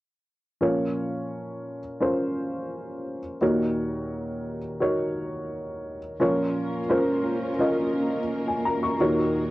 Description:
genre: pop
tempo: 86 BPM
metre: 4/4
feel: straight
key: Bb minor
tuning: A4 = 440 Hz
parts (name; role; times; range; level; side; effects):
- dark upright piano; accompaniment; 0.6-9.5 s; Eb2 to Db6; -24 LUFS; equal; cassette tape
- warm studio string section; sustained chords; 6.2-9.5 s; Bb3 to Bb4; -29 LUFS; right 1 dB; cassette tape
room: moderate booth ambience, RT60 0.2 s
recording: home recording on cassette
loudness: -24 LUFS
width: side -18 dB against mid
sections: 0.6-6.2 A section; 6.2-9.5 B section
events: none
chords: 0.6 Bbm; 3.4 Ebm7; 6.2 Bbm; 9.0 Ebm7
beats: | 0.62 1.32 2.02 2.71 | 3.41 4.11 4.81 5.51 | 6.21 6.91 7.60 8.30 | 9.00

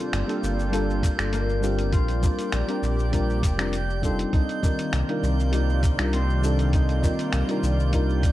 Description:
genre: sunset chillout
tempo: 100 BPM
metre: 4/4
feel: swing 53% on 16ths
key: C dorian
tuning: A4 = 438 Hz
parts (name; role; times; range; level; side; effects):
- mellow FM electric piano; accompaniment; 0.0-8.2 s; Eb3 to D5; -29 LUFS; left 1 dB; chorus, auto-pan, digital delay
- lush unison pad; sustained chords; 0.0-8.3 s; C3 to D5; -31 LUFS; equal; chorus, vintage 12-bit sampler grit
- concert harp; arpeggios; 0.0-8.3 s; Bb3 to F4; -32 LUFS; left 1 dB; digital delay
- drifting glass-harmonics texture; texture; 0.0-8.3 s; G6; -37 LUFS; right 5 dB; chorus, built-in reverb
- round analog bass; bass; 0.1-8.3 s; F1 to C2; -24 LUFS; equal; none
- dusty soul sampler-style drum kit; drums; 0.1-8.3 s; finger snaps, hi-hat, shaker; -33 LUFS; equal; none
- electronic kick drum; drums; 1.0-8.3 s; none; -23 LUFS; equal; none
room: light reverb, digital ambience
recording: worn, warbling old tape, cassette tape, warbly pitch drift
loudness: -21 LUFS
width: side -15 dB against mid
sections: 0.0-8.3 A section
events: none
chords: 0.0 Gm9; 1.9 Bb69; 4.3 Cm11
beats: 0.13 0.73 1.33 | 1.93 2.53 3.13 3.73 | 4.33 4.93 5.53 6.13 | 6.73 7.33 7.93

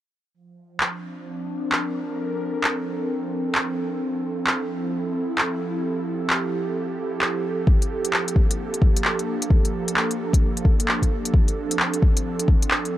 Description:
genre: future garage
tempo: 131 BPM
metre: 4/4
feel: swing 62% on 16ths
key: unclear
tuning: A4 = 440 Hz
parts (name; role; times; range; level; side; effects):
- airy breathy pad; sustained chords; 0.8-13.0 s; F3 to Bb4; -26 LUFS; right 1 dB; chorus, vintage 12-bit sampler grit, sidechain pumping
- organic electronic drum kit; drums; 0.8-12.9 s; handclaps, hi-hat; -22 LUFS; equal; none
- electronic kick drum; drums; 7.7-12.6 s; none; -18 LUFS; equal; none
room: little or no reverb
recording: dry, gritty hardware recording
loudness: -20 LUFS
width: side -14 dB against mid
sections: 0.3-13.0 A section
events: none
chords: 0.3 Bbmaj9; 4.0 Fmaj9; 7.7 Gm9; 11.3 Dm7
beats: | 0.35 0.81 1.26 1.72 | 2.18 2.64 3.10 3.55 | 4.01 4.47 4.93 5.38 | 5.84 6.30 6.76 7.22 | 7.67 8.13 8.59 9.05 | 9.51 9.96 10.42 10.88 | 11.34 11.80 12.26 12.71

